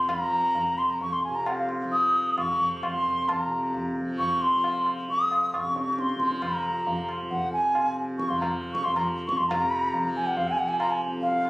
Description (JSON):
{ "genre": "indian classical, Hindustani", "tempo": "135 BPM", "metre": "7/4", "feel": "straight", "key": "F raga bhairavi", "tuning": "A4 = 440 Hz", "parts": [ { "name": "bright bansuri", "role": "melody", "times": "0.0-11.5 s", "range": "F5 to Eb6+20c", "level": "-24 LUFS", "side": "equal", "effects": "none" }, { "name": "tanpura", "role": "drone", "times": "0.0-11.5 s", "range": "F2 to F3", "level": "-33 LUFS", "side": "equal", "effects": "none" }, { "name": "tabla", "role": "percussion", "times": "0.1-11.5 s", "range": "none", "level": "-33 LUFS", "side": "equal", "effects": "none" } ], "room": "moderate studio ambience, RT60 0.5 s", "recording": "recorded on a phone in the room, studio reverb, compression", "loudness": "-24 LUFS", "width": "side -20 dB against mid", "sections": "0.0-9.5 A section; 9.5-11.5 B section", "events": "speeding up 0.0-11.5", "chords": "none" }